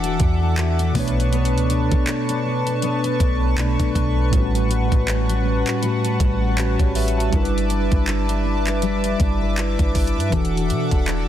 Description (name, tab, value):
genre	contemporary R&B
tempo	80 BPM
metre	4/4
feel	swing 58% on 16ths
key	B minor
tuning	A4 = 442 Hz
part	mellow tine electric piano	accompaniment	0.0-11.3 s	A2 to A5	-24 LUFS	right 2 dB	medium stereo tremolo
part	chorused pulse-width pad	sustained chords	0.0-11.3 s	D4 to D6	-26 LUFS	equal	none
part	fingerpicked steel-string acoustic guitar	arpeggios	0.0-11.3 s	A2 to C#5	-26 LUFS	left 8 dB	tape echo
part	clean 808-style bass	bass	0.0-11.3 s	E1 to B2	-22 LUFS	right 1 dB	none
part	smooth R&B drum kit	drums	0.0-11.3 s	handclaps, hi-hat, kick drum	-23 LUFS	right 1 dB	none
room	digital ambience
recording	dense, heavily limited modern master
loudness	-18 LUFS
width	side -11 dB against mid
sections	0.0-11.3 A section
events	none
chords	0.0 E9sus4; 0.9 Bm9; 4.3 A13; 7.3 G6; 10.3 E9sus4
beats	0.57 | 1.32 2.08 2.83 3.58 | 4.33 5.08 5.83 6.58 | 7.33 8.07 8.82 9.57 | 10.32 11.07